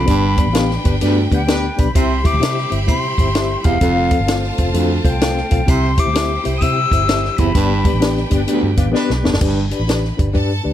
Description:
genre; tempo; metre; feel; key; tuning
uptempo 1960s-style soul; 128 BPM; 4/4; swing 65% on 8ths; unclear; A4 = 441 Hz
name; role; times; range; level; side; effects
breathy mellow silver concert flute; melody; 0.0-8.3 s; F5 to E6; -22 LUFS; left 4 dB; none
bright symphonic violin section; second line; 0.0-10.7 s; D4 to B5; -29 LUFS; equal; none
glockenspiel with soft plastic mallets; second line; 0.0-8.3 s; F6 to E7; -31 LUFS; right 2 dB; none
mellow reed electric piano; accompaniment; 0.0-10.7 s; B3 to F5; -21 LUFS; left 4 dB; fast tremolo
breathy baritone saxophone; riff; 0.0-9.7 s; D2 to C3; -20 LUFS; right 4 dB; none
vintage muted fingered electric bass; bass; 0.0-10.7 s; E1 to C3; -20 LUFS; equal; none
compact cocktail drum kit; drums; 0.1-10.5 s; crash cymbal, hi-hat, kick drum, snare drum; -18 LUFS; equal; none
clear horn section; second line; 0.8-1.9, 8.3-9.3 s; G3 to B4; -28 LUFS; right 1 dB; none
tonewheel organ; sustained chords; 2.0-9.4 s; G3 to A4; -28 LUFS; right 1 dB; chorus vibrato, fast rotary speaker
room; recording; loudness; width
little or no reverb; none; -14 LUFS; side -11 dB against mid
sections
0.0-9.4 A section; 9.4-10.7 B section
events
band accent 0.1-1.9, 7.6-9.4; drum fill 9.0-9.4, 10.4-10.7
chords
0.1 G; 1.9 C; 3.8 F; 5.7 C; 7.6 G

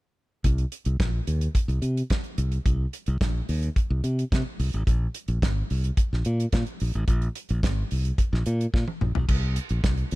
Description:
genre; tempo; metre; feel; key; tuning
disco; 109 BPM; 4/4; straight; unclear; A4 = 436 Hz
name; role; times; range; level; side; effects
damped 70s drum kit; drums; 0.4-10.2 s; crash cymbal, hi-hat, kick drum, snare drum, toms; -26 LUFS; equal; none
modern bright fingered electric bass; bass; 0.5-10.2 s; Ab1 to C3; -24 LUFS; equal; none
room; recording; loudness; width
little or no reverb; dark, warm production; -23 LUFS; side -20 dB against mid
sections
0.4-9.3 A section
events
drum fill 8.7-9.3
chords
none

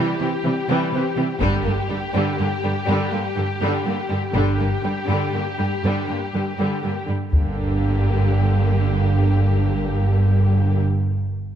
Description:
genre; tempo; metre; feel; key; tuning
cinematic, epic orchestral film score; 81 BPM (dotted quarters); 12/8; straight; G dorian; A4 = 441 Hz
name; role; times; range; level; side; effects
warm symphonic violin section; melody; 0.0-10.8 s; G4; -28 LUFS; left 4 dB; none
clear symphonic violin section; second line; 0.0-10.8 s; G3 to C4; -29 LUFS; left 3 dB; none
rich symphonic viola section; accompaniment; 0.0-10.8 s; D3 to E3; -27 LUFS; right 2 dB; none
warm symphonic cello section; bass; 0.0-10.8 s; G2 to C3; -23 LUFS; right 1 dB; none
warm symphonic double bass section; bass; 1.4-10.8 s; G1; -20 LUFS; right 1 dB; none
taiko ensemble; drums; 1.4-2.3, 7.3-7.4 s; none; -22 LUFS; left 1 dB; none
room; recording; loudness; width
moderate scoring stage reverb, RT60 1.6 s; dark, warm production; -18 LUFS; side -10 dB against mid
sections
0.0-7.3 A section; 7.3-10.3 B section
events
none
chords
0.0 C; 1.4 G5; 7.3 Gm

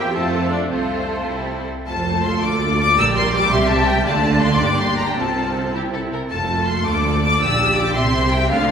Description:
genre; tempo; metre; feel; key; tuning
quick classical-period movement for string orchestra; 108 BPM (dotted quarters); 6/8; straight; F major; A4 = 440 Hz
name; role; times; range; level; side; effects
clear symphonic violin section; melody; 0.0-8.7 s; C5 to E6; -20 LUFS; left 3 dB; none
rich symphonic violin section; second line; 0.0-8.7 s; G3 to F5; -24 LUFS; left 1 dB; none
rich symphonic viola section; accompaniment; 0.0-8.7 s; G3 to A4; -23 LUFS; right 3 dB; none
rich symphonic double bass section; bass; 0.0-8.7 s; F1 to F2; -25 LUFS; right 2 dB; none
warm symphonic cello section; bass; 0.0-8.7 s; D2 to A4; -25 LUFS; right 2 dB; none
room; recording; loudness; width
wet concert hall reverb, RT60 1.9 s; heard from further back in the room; -16 LUFS; side -7 dB against mid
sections
0.0-1.9 A section; 1.9-8.7 B section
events
none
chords
0.1 F; 0.7 F/C; 1.9 F; 2.4 Dm; 3.0 Gm/Bb; 3.5 C; 4.1 Dm; 4.6 Gm; 5.2 F/C; 5.7 C; 6.3 F; 6.9 Dm; 7.4 Gm/Bb; 8.0 C

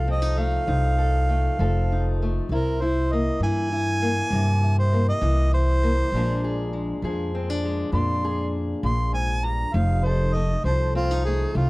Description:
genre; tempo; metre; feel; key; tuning
acoustic country blues, solo or duo; 66 BPM (dotted quarters); 12/8; straight; unclear; A4 = 440 Hz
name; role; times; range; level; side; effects
mellow harmonica; melody; 0.0-11.7 s; F4 to C6; -27 LUFS; right 2 dB; none
fingerpicked steel-string acoustic guitar; accompaniment; 0.0-11.7 s; F2 to A4; -27 LUFS; left 2 dB; none
upright bass; bass; 0.0-11.7 s; F1 to G2; -23 LUFS; equal; none
room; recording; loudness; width
little or no reverb; dry, close 1970s-style studio recording; -21 LUFS; side -22 dB against mid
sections
0.0-11.7 A section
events
none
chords
0.0 F7; 2.5 C7; 6.1 Bb7; 9.7 F7

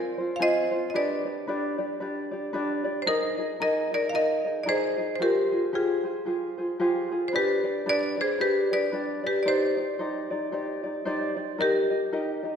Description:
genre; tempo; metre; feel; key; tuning
hawaiian; 113 BPM; 4/4; swing 59% on 8ths; C minor; A4 = 440 Hz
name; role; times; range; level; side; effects
marimba with hard mallets; melody; 0.0-12.6 s; Eb4 to F5; -25 LUFS; left 1 dB; none
tenor ukulele; accompaniment; 0.0-12.6 s; C4 to Eb5; -28 LUFS; equal; none
room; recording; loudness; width
wet scoring stage reverb, RT60 1.6 s; recorded in a church or concert hall; -24 LUFS; side -7 dB against mid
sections
0.0-11.6 A section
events
none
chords
0.0 Fm; 0.9 G; 3.1 Absus2; 5.2 Fmadd9; 7.3 G; 9.5 Cmadd9; 11.6 Eb

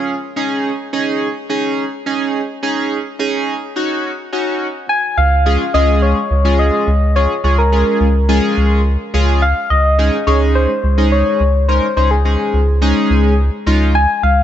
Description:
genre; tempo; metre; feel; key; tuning
dance-pop; 106 BPM; 4/4; straight; Db major; A4 = 440 Hz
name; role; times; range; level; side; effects
chorused polysynth; accompaniment; 0.0-14.0 s; Ab3 to Bb4; -17 LUFS; equal; none
soft struck synth lead; melody; 4.9-14.4 s; Ab4 to Ab5; -17 LUFS; left 1 dB; chorus, phaser, tape echo
round analog bass; bass; 5.2-14.4 s; Db2; -13 LUFS; equal; none
room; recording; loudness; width
light reverb, digital ambience; high-pass filter, nothing above 8.0 kHz; -13 LUFS; side -10 dB against mid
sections
0.0-4.9 A section; 4.9-14.4 B section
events
build-up 0.0-4.9; drop 4.9-14.4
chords
0.4 Absus4/Db; 4.9 Db; 9.4 Absus4/Db

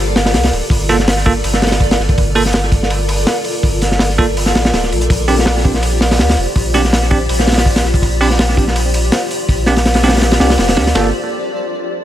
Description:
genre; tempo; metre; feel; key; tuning
drum and bass, jungle; 164 BPM; 4/4; swing 55% on 16ths; G minor; A4 = 440 Hz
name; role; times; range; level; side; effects
granular cloud pad; sustained chords; 0.0-11.1 s; F4 to D5; -20 LUFS; left 1 dB; built-in reverb
saturated sub bass; bass; 0.0-11.1 s; D1 to D2; -17 LUFS; equal; tube saturation
crunchy breakbeat drum kit; drums; 0.2-11.0 s; hi-hat, kick drum, ride cymbal, snare drum; -14 LUFS; equal; none
bell-like tine electric piano; stabs; 0.9-11.1 s; Bb3 to A4; -19 LUFS; right 3 dB; dub echo
room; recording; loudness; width
studio reverb; none; -11 LUFS; side -12 dB against mid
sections
0.0-11.0 A section; 11.0-12.0 B section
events
drop 0.0-11.0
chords
0.0 Gm9; 5.1 Bb69; 11.0 Gm9

